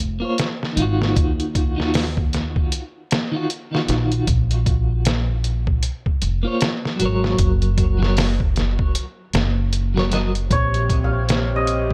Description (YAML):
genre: trip hop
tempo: 77 BPM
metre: 4/4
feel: swing 60% on 16ths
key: Bb minor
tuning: A4 = 439 Hz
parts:
  - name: upright bass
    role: bass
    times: 0.0-11.9 s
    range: F1 to Eb2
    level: -23 LUFS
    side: equal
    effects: tube saturation
  - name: clean electric guitar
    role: accompaniment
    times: 0.2-10.3 s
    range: Eb3 to Eb5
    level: -27 LUFS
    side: equal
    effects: tremolo, tape echo
  - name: trip hop sampler-style drum kit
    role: drums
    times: 0.4-11.9 s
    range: hi-hat, kick drum, snare drum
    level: -24 LUFS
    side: equal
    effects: none
  - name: santur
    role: melody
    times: 10.5-11.9 s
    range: Db5 to F5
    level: -26 LUFS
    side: equal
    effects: dub echo
  - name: warm studio string section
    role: sustained chords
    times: 10.5-11.9 s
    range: C3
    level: -28 LUFS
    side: equal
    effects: none
room: little or no reverb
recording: echo-heavy mix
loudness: -20 LUFS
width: mono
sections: 0.0-11.9 A section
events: none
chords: 0.0 Bbmadd9; 1.2 Ebmadd9; 4.3 Bbm; 7.4 Gb; 10.5 Bbmadd9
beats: 0.38 | 1.16 1.94 2.71 3.49 | 4.27 5.05 5.83 6.61 | 7.39 8.17 8.95 9.73 | 10.51 11.29